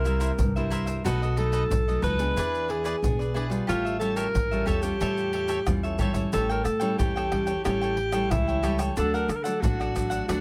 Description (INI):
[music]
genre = samba and choro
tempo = 91 BPM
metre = 4/4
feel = straight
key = unclear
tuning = A4 = 440 Hz
[part]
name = breathy alto saxophone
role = melody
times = 0.0-10.4 s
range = E4 to B4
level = -30 LUFS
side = equal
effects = none
[part]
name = cavaquinho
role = accompaniment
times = 0.0-10.4 s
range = D4 to G5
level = -35 LUFS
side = equal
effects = none
[part]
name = nylon-string guitar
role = accompaniment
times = 0.0-10.4 s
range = F#2 to G#4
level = -34 LUFS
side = equal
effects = none
[part]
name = upright bass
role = bass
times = 0.0-10.4 s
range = A1 to D3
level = -32 LUFS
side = equal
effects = none
[part]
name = tube shaker, pandeiro, surdo and tamborim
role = percussion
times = 0.1-10.4 s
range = none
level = -32 LUFS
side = equal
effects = none
[sound]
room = light reverb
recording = close, detailed microphones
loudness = -26 LUFS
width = mono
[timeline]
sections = 0.0-6.3 A section; 6.3-10.4 B section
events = drum fill 5.7-6.3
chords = 0.0 C7; 1.1 B7; 2.4 E7; 3.7 A7b13; 6.3 A7; 9.0 D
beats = 0.39 | 1.05 1.71 2.37 3.03 | 3.69 4.35 5.01 5.67 | 6.33 6.99 7.65 8.31 | 8.97 9.63 10.29